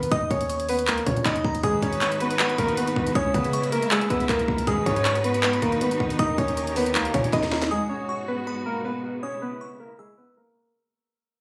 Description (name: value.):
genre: hip hop, trap.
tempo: 158 BPM.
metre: 4/4.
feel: half-time.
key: G# minor.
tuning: A4 = 440 Hz.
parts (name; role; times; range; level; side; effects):
soft electric-piano-like synth keys; melody; 0.0-10.7 s; G#3 to D#5; -27 LUFS; equal; chorus, low-pass filter.
hard-hitting 808-style bass; bass; 0.0-7.7 s; G#1 to C#3; -32 LUFS; equal; none.
trap drum kit; drums; 0.0-7.7 s; handclaps, hi-hat, kick drum, snare drum; -29 LUFS; equal; overdrive.
delicate synth tine bell; second line; 0.1-10.3 s; A#5 to E6; -36 LUFS; equal; chorus, digital delay.
warm studio string section; sustained chords; 1.6-10.7 s; G#2 to B4; -34 LUFS; equal; low-pass filter.
room: light reverb.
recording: recorded on a phone in the room, club reverb.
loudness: -24 LUFS.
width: mono.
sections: 0.0-7.7 A section; 7.7-10.7 B section.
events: drum fill 7.3-7.7; fade-out 7.7-10.7; filter sweep 7.7-10.7.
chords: 0.1 D#5; 1.6 G#m7; 3.2 C#m7; 4.7 G#m7; 6.2 D#; 7.7 G#m7; 9.2 C#m7.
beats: | 0.12 0.49 0.88 1.25 | 1.64 2.01 2.39 2.77 | 3.15 3.53 3.91 4.29 | 4.67 5.05 5.43 5.81 | 6.19 6.57 6.95 7.33 | 7.71 8.09 8.47 8.85 | 9.23 9.61 9.99 10.37.